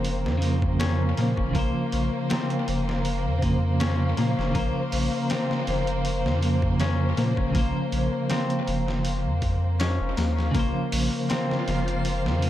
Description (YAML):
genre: trip hop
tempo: 80 BPM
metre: 4/4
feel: swing 54% on 16ths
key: Bb minor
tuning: A4 = 440 Hz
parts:
  - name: clean electric guitar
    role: accompaniment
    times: 0.0-12.5 s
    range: Db3 to C5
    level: -27 LUFS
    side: right 1 dB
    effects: tremolo, tape echo
  - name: dark studio violin section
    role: sustained chords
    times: 0.0-12.5 s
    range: Bb3 to C5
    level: -32 LUFS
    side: left 1 dB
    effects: vintage 12-bit sampler grit
  - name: Celtic harp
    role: arpeggios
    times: 0.0-12.5 s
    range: Bb3 to Db4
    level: -32 LUFS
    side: left 6 dB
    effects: dub echo
  - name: soft dub sub bass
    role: bass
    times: 0.0-12.5 s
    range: F1 to Bb2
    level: -26 LUFS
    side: equal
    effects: none
  - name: trip hop sampler-style drum kit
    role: drums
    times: 0.0-12.5 s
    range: hi-hat, kick drum, snare drum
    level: -30 LUFS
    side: equal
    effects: overdrive, tape echo
  - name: backwards swelling texture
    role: texture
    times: 11.5-12.5 s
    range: F4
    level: -38 LUFS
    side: equal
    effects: built-in reverb
room: light reverb, digital ambience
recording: echo-heavy mix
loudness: -22 LUFS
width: side -12 dB against mid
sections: 0.0-12.5 A section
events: none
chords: 0.0 Bbmadd9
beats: 0.04 0.80 | 1.54 2.29 3.04 3.79 | 4.54 5.29 6.04 6.79 | 7.54 8.29 9.04 9.79 | 10.54 11.29 12.04